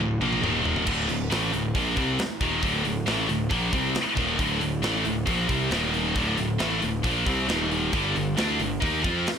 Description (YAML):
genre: heavy metal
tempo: 136 BPM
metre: 4/4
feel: straight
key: unclear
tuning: A4 = 440 Hz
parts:
  - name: scooped high-gain guitar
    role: riff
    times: 0.0-9.3 s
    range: D2 to F4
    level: -24 LUFS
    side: equal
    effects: distortion
  - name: fuzz picked electric bass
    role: bass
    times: 0.0-9.3 s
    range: D1 to F2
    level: -30 LUFS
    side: equal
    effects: overdrive
  - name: tight metal drum kit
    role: drums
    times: 0.2-9.4 s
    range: crash cymbal, hi-hat, kick drum, snare drum, toms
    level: -30 LUFS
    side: equal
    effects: none
room: small room ambience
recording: blown-out, overdriven recording, overdrive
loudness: -22 LUFS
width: side -7 dB against mid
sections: 0.9-9.4 A section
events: drum fill 0.0-0.9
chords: 0.4 Eb5; 0.9 D5; 5.7 Eb5; 6.2 D5; 7.5 Eb5; 7.9 G5